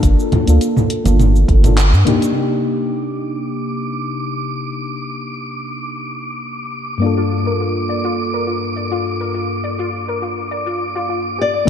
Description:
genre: sunset chillout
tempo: 103 BPM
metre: 4/4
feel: straight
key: G minor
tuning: A4 = 442 Hz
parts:
  - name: mellow FM electric piano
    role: accompaniment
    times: 0.0-11.7 s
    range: G2 to A4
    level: -20 LUFS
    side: moving between left 6 dB and right 2 dB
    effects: chorus, auto-pan, vintage 12-bit sampler grit, digital delay
  - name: round analog bass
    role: bass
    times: 0.0-2.0, 11.7 s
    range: G1 to G2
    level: -12 LUFS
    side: equal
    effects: none
  - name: deep house drum kit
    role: drums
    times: 0.0-2.3 s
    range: cabasa, handclaps, hi-hat, toms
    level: -20 LUFS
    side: equal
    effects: none
  - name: electronic kick drum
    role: drums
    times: 0.0-1.6, 11.7 s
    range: none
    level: -15 LUFS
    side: equal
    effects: none
  - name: congas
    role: percussion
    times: 0.3-2.2 s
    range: none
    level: -24 LUFS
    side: right 2 dB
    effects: none
  - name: wind-like tuned noise texture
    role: texture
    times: 3.0-11.7 s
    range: D6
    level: -26 LUFS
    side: right 2 dB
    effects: built-in reverb
  - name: soft round pluck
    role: arpeggios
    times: 7.0-11.7 s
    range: F4 to D5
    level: -23 LUFS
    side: left 2 dB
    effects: ensemble chorus, vintage 12-bit sampler grit, digital delay
  - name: nylon-string guitar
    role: melody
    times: 11.4-11.7 s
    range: D5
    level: -20 LUFS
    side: left 5 dB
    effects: none
room: moderate lush hall reverb, RT60 2.7 s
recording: dark, warm production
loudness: -16 LUFS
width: side -9 dB against mid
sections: 0.0-2.4 A section; 2.4-11.7 B section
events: band accent 1.8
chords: 0.0 Gm7; 2.4 Cm7; 7.0 Gm7

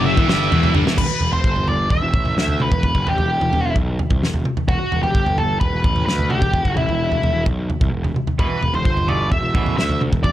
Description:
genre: quiet-loud alternative rock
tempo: 130 BPM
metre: 4/4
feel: straight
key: E minor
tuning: A4 = 439 Hz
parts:
  - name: octave-fuzz lead guitar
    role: melody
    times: 0.0-10.3 s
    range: E4 to E5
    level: -22 LUFS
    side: equal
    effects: distortion
  - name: dark studio string section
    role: sustained chords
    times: 0.0-0.9 s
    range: none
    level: barely audible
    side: none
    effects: none
  - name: high-gain distorted guitar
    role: riff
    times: 0.0-1.0 s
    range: E2 to G3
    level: -24 LUFS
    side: equal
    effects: distortion
  - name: thick fuzz guitar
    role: riff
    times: 0.0-1.0 s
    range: E2 to G3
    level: -22 LUFS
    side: left 2 dB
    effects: distortion
  - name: fuzz picked electric bass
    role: bass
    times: 0.0-10.3 s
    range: E1 to D2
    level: -22 LUFS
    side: equal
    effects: overdrive
  - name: loose indie drum kit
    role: drums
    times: 0.2-10.3 s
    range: crash cymbal, kick drum, snare drum, toms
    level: -19 LUFS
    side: equal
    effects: none
  - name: twangy electric guitar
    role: arpeggios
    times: 8.4-10.3 s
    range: E2 to E3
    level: -28 LUFS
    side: right 6 dB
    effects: lush chorus
room: small room ambience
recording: none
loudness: -16 LUFS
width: side -13 dB against mid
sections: 1.0-10.3 A section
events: drum fill 0.0-1.0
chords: 0.0 Em

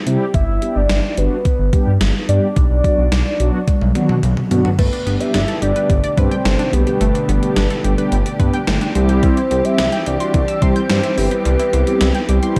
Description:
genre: synth-pop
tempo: 108 BPM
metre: 4/4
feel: straight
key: unclear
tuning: A4 = 440 Hz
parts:
  - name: soft octave-layered synth lead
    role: melody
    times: 0.0-12.6 s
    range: B4 to E5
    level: -24 LUFS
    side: equal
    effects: chorus, phaser, tape echo
  - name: mellow synth brass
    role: accompaniment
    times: 0.1-12.6 s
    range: F#3 to G4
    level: -23 LUFS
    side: equal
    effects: chorus
  - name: smooth synth bass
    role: bass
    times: 0.1-12.6 s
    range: G1 to C3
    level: -20 LUFS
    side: equal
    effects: none
  - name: gated 80s digital drum machine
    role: drums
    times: 0.1-12.6 s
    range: crash cymbal, hi-hat, kick drum, snare drum, toms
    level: -21 LUFS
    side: equal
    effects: gated reverb, gated reverb snare, overdrive
  - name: warm studio string section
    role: sustained chords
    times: 4.8-12.6 s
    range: B2 to G4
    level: -28 LUFS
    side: equal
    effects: none
  - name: analog pluck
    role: arpeggios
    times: 4.8-12.6 s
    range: G3 to G6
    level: -28 LUFS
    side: equal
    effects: chorus, tape echo
room: moderate lush hall reverb, RT60 2.0 s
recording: dark, warm production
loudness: -16 LUFS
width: mono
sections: 0.0-4.8 A section; 4.8-12.6 B section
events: drum fill 3.7-4.8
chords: 0.3 G; 2.6 Bm; 4.8 Gadd9; 9.0 C

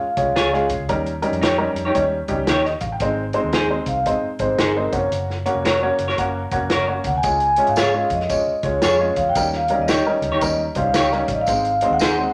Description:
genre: uptempo 1960s-style soul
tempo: 113 BPM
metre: 4/4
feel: swing 64% on 8ths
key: Db major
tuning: A4 = 442 Hz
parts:
  - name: vibraphone with soft mallets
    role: melody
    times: 0.0-0.7, 3.9-12.3 s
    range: C5 to Ab5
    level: -23 LUFS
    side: equal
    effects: none
  - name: clear upright piano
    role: accompaniment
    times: 0.0-12.3 s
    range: G3 to G5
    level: -25 LUFS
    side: equal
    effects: none
  - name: vintage muted fingered electric bass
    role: bass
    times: 0.0-12.3 s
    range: F1 to Ab2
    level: -31 LUFS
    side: equal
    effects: none
  - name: warm soul drum kit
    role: drums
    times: 0.2-12.2 s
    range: hi-hat, kick drum, snare drum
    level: -28 LUFS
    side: equal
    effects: none
  - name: congas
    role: percussion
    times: 0.2-12.2 s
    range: none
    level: -39 LUFS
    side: equal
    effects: none
  - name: electric guitar through a small old amp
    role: stabs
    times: 0.4-12.1 s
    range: Eb4 to Db5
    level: -24 LUFS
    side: equal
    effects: warbly pitch drift
  - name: tambourine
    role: percussion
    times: 7.2-12.2 s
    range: none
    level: -36 LUFS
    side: equal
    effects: none
room: moderate large studio reverb, RT60 0.8 s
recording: none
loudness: -20 LUFS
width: mono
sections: 0.0-12.3 A section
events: none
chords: 0.0 Db; 0.9 Eb7; 3.0 Ab; 4.9 Gb; 7.2 Db; 9.4 Eb7; 11.5 Ab

